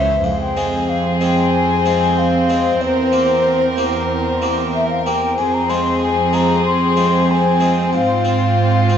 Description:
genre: classical, baroque-style concerto movement with solo episodes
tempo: 94 BPM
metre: 4/4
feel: straight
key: F minor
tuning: A4 = 438 Hz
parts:
  - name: mellow hollow concert flute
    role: melody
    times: 0.0-9.0 s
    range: C5 to C6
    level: -19 LUFS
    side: left 3 dB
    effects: none
  - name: warm chamber violin section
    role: melody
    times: 0.0-9.0 s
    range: C5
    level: -25 LUFS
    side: left 6 dB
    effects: none
  - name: harpsichord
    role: accompaniment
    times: 0.0-9.0 s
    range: E2 to G4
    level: -25 LUFS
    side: right 1 dB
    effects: none
  - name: warm chamber viola section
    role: accompaniment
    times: 0.0-9.0 s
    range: C4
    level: -22 LUFS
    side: right 2 dB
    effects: none
  - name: warm chamber cello section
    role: bass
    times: 0.0-9.0 s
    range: E2 to Db3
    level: -20 LUFS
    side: right 3 dB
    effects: none
  - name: rich chamber violin section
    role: second line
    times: 0.2-9.0 s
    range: F4 to Bb4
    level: -23 LUFS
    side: left 4 dB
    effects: none
room: wet recital hall reverb, RT60 1.5 s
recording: nothing above 8.0 kHz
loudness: -14 LUFS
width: side -8 dB against mid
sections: 0.2-9.0 A section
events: none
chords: 0.2 Fm; 2.8 C7/E; 5.4 Fm; 7.9 Fm/Ab

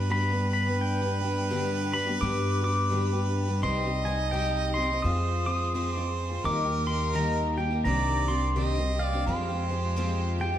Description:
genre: acoustic folk duo or small band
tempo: 85 BPM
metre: 4/4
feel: swing 61% on 8ths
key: C minor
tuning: A4 = 440 Hz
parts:
  - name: warm harmonica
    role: second line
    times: 0.0-10.6 s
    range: Bb4 to Eb5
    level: -33 LUFS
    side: right 4 dB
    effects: none
  - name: picked twelve-string acoustic guitar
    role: accompaniment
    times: 0.0-10.6 s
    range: G2 to Ab4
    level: -32 LUFS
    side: left 3 dB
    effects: none
  - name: bright chamber string section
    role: sustained chords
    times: 0.0-10.6 s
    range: C3 to Bb4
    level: -37 LUFS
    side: equal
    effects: none
  - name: upright bass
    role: bass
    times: 0.0-10.6 s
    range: C2 to G2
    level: -29 LUFS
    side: equal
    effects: none
  - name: pedal steel guitar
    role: melody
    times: 0.1-10.6 s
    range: F5 to Eb6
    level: -31 LUFS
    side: equal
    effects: none
room: moderate recital hall reverb, RT60 1.5 s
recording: dark, warm production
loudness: -25 LUFS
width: side -11 dB against mid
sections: 0.0-10.6 A section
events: none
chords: 0.0 G; 3.6 Cm; 5.0 Fm; 6.4 Eb; 7.9 Cmadd9; 9.3 Fmadd9

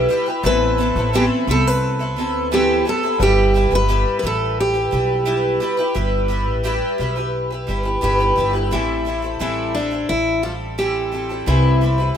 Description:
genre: pop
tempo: 87 BPM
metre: 4/4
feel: straight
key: A minor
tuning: A4 = 442 Hz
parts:
  - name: picked steel-string acoustic guitar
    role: melody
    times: 0.0-12.2 s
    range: D4 to B4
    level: -20 LUFS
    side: right 1 dB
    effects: none
  - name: bright upright piano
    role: accompaniment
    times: 0.0-6.0 s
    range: G3 to B4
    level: -31 LUFS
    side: left 7 dB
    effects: none
  - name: picked twelve-string acoustic guitar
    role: accompaniment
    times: 0.0-12.2 s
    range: A2 to B4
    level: -21 LUFS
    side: left 1 dB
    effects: double-tracked left and right
  - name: upright bass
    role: bass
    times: 0.0-12.1 s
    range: G1 to D2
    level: -22 LUFS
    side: equal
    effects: none
room: small room reverb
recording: rough home demo mix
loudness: -16 LUFS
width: side -8 dB against mid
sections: 0.0-6.0 A section; 6.0-8.7 B section; 8.7-12.2 C section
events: none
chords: 0.4 Amadd9; 3.2 Em/G; 8.7 Am7; 11.5 Cmaj7

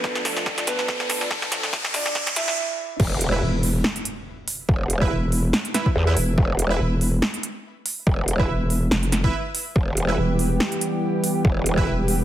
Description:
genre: heavy wobble dubstep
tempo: 142 BPM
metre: 4/4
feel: swing 55% on 16ths, half-time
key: E phrygian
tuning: A4 = 441 Hz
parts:
  - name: warm grand piano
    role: melody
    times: 0.0-2.9 s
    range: B3 to E5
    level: -30 LUFS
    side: right 3 dB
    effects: ping-pong delay
  - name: lush unison pad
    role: sustained chords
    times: 0.0-2.5, 9.8-12.2 s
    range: E3 to A4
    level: -27 LUFS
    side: equal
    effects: chorus, sidechain pumping
  - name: big-room dance drum kit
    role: drums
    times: 0.0-12.2 s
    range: crash cymbal, hi-hat, snare drum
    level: -25 LUFS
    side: equal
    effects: overdrive, high-pass filter on hats, high-pass filter on snare, high-pass filter on cymbals, high-pass filter on room
  - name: electronic kick drum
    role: drums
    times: 0.0-11.9 s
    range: none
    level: -23 LUFS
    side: equal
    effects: overdrive
  - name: riser and impact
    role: sound effects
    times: 0.0-4.7 s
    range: none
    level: -29 LUFS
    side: equal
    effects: none
  - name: growl bass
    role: bass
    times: 3.0-11.9 s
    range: E1 to E2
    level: -22 LUFS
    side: equal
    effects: chorus, overdrive
  - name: supersaw stab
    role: stabs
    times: 3.3-11.9 s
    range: E4 to E5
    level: -29 LUFS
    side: right 3 dB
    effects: ping-pong delay
  - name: vowel-sweep wobble bass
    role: bass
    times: 3.4-12.2 s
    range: E1 to F1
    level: -21 LUFS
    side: equal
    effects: chorus, overdrive
room: light reverb, digital ambience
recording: heavily compressed radio sound, high-pass filter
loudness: -20 LUFS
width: side -12 dB against mid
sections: 0.0-3.0 A section; 3.0-12.2 B section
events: build-up 0.0-3.0; drum fill 0.0-2.6; riser 0.0-2.6; filter sweep on analog synth pad 0.0-3.0; break 2.6-3.0; drop 3.0-12.2; impact 3.0-4.7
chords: 0.0 Dm/F; 3.0 Em

